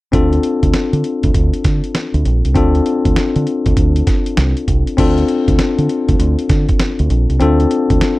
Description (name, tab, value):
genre	R&B, new jack swing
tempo	99 BPM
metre	4/4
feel	swing 64% on 16ths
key	unclear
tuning	A4 = 442 Hz
part	bell-like tine electric piano	accompaniment	0.1-8.2 s	C4 to A4	-16 LUFS	left 3 dB	none
part	deep dub fingered electric bass	bass	0.1-8.0 s	Bb1 to D3	-15 LUFS	right 1 dB	none
part	dusty soul sampler-style drum kit	drums	0.1-8.2 s	crash cymbal, hi-hat, kick drum, snare drum	-16 LUFS	right 1 dB	none
room	little or no reverb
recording	dry, close 1970s-style studio recording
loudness	-12 LUFS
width	side -19 dB against mid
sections	0.1-5.0 A section; 5.0-8.2 B section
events	none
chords	0.1 Dm7